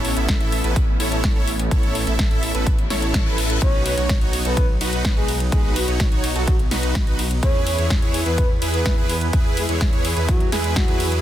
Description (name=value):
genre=EDM, festival progressive house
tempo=126 BPM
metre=4/4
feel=straight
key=unclear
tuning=A4 = 441 Hz
part: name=lush unison pad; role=sustained chords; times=0.0-11.2 s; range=E3 to B4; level=-30 LUFS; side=equal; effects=chorus, sidechain pumping
part: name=supersaw chords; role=riff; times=0.0-11.2 s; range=D#4 to E5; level=-26 LUFS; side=right 1 dB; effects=sidechain pumping, dub echo
part: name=wide detuned saw bass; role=bass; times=0.0-11.2 s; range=A1 to E2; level=-24 LUFS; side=equal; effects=chorus, sidechain pumping
part: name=big-room dance drum kit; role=drums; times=0.0-11.2 s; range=hi-hat, ride cymbal, snare drum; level=-28 LUFS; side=left 1 dB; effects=none
part: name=electronic kick drum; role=drums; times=0.3-10.9 s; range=none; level=-19 LUFS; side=equal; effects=none
part: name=reverse cymbal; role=sound effects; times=2.9-3.6 s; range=none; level=-33 LUFS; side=left 7 dB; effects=none
part: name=breathy flute-like synth lead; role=melody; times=3.6-11.2 s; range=F#4 to C#5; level=-27 LUFS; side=equal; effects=wide subtle chorus, dub echo
room=little or no reverb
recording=dense, heavily limited modern master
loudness=-17 LUFS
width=side -12 dB against mid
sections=0.0-11.2 A section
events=reverse cymbal 2.9-3.6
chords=0.0 A; 3.6 B; 7.4 E